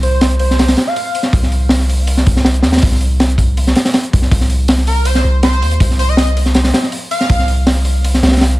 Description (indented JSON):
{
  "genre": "drum and bass, jungle",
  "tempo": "161 BPM",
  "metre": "4/4",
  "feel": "straight",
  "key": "C minor",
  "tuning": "A4 = 440 Hz",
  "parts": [
    { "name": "airy dreamy lead", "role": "melody", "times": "0.0-1.1, 4.9-7.4 s", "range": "Bb4 to F5", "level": "-21 LUFS", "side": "equal", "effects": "chorus, dub echo" },
    { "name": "long sustained 808-style bass", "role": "bass", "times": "0.0-8.6 s", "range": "C2 to Eb2", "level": "-13 LUFS", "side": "equal", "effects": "none" },
    { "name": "crunchy breakbeat drum kit", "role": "drums", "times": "0.0-8.6 s", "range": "hi-hat, kick drum, snare drum", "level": "-14 LUFS", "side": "equal", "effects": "none" }
  ],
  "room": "small room ambience",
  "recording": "none",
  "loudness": "-11 LUFS",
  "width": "side -18 dB against mid",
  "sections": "0.0-8.6 A section",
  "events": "none",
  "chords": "none"
}